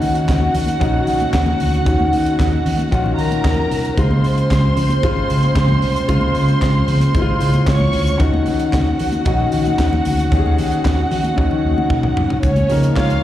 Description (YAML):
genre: disco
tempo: 114 BPM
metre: 4/4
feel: straight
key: unclear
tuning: A4 = 441 Hz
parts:
  - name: dark studio violin section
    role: second line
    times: 0.0-13.2 s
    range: Db4 to Db6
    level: -22 LUFS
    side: right 1 dB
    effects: none
  - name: warm concert grand piano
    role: accompaniment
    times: 0.0-13.2 s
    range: Db3 to Db5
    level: -20 LUFS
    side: left 2 dB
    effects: slapback echo
  - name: fingered electric bass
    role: bass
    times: 0.0-13.2 s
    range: Ab1 to Eb3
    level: -18 LUFS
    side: equal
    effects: none
  - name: tight funk drum kit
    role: drums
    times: 0.0-13.2 s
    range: handclaps, hi-hat, kick drum, snare drum, toms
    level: -21 LUFS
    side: equal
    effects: none
  - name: congas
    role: percussion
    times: 0.3-13.0 s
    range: none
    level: -27 LUFS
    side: left 1 dB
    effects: none
room: light reverb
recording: live gig heard through the venue's PA, recital hall reverb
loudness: -14 LUFS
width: side -12 dB against mid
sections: 0.0-12.4 A section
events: drum fill 11.4-12.4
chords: 0.0 Ebm9; 4.0 Dbmaj7; 8.2 Ebm7; 12.4 Db6